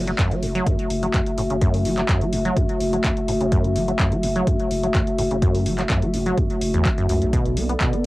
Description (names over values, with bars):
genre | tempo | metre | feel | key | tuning
acid house | 126 BPM | 4/4 | straight | F# minor | A4 = 440 Hz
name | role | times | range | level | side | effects
dark analog pad | sustained chords | 0.0-8.1 s | A3 to E5 | -24 LUFS | left 1 dB | chorus, sidechain pumping, cassette tape
acid bass, saw | riff | 0.0-8.1 s | E2 to B3 | -24 LUFS | equal | tube saturation, wide subtle chorus, sidechain pumping, cassette tape, tape echo
saturated sub bass | bass | 0.0-7.8 s | F#1 to C#2 | -28 LUFS | equal | sidechain pumping
punchy analog drum machine | drums | 0.1-8.0 s | handclaps, hi-hat | -29 LUFS | equal | overdrive
electronic kick drum | drums | 0.2-7.9 s | none | -23 LUFS | equal | overdrive
room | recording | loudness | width
light reverb | home recording on cassette | -18 LUFS | side -18 dB against mid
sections
0.0-8.1 A section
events
filter sweep on acid bass 0.0-8.1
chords
0.0 F#m7; 7.3 Bm7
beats
0.19 0.66 1.14 | 1.61 2.09 2.57 3.04 | 3.52 4.00 4.47 4.95 | 5.42 5.90 6.38 6.85 | 7.33 7.80